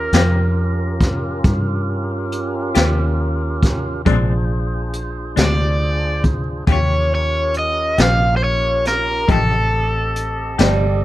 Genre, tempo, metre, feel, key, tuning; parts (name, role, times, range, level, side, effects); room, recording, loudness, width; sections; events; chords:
slow blues; 46 BPM (dotted quarters); 12/8; straight; A4 = 441 Hz
crunchy overdriven guitar; melody; 0.0-11.0 s; A4 to F5; -20 LUFS; equal
tonewheel organ; sustained chords; 0.0-11.0 s; C4 to Eb5; -26 LUFS; right 1 dB; slow rotary speaker
vintage muted fingered electric bass; bass; 0.0-11.0 s; G1 to G2; -20 LUFS; equal
clean electric guitar; accompaniment; 0.1-10.9 s; Bb2 to G4; -22 LUFS; left 9 dB; tremolo
jazz brush drum kit; drums; 0.1-10.8 s; hi-hat, kick drum, snare drum; -19 LUFS; equal
breathy tenor saxophone; second line; 10.6-11.0 s; G3; -19 LUFS; right 5 dB
little or no reverb; dark, warm production; -16 LUFS; side -15 dB against mid
0.0-11.0 A section
0.0 Eb9; 4.1 Bb9; 6.7 Eb9; 9.3 F9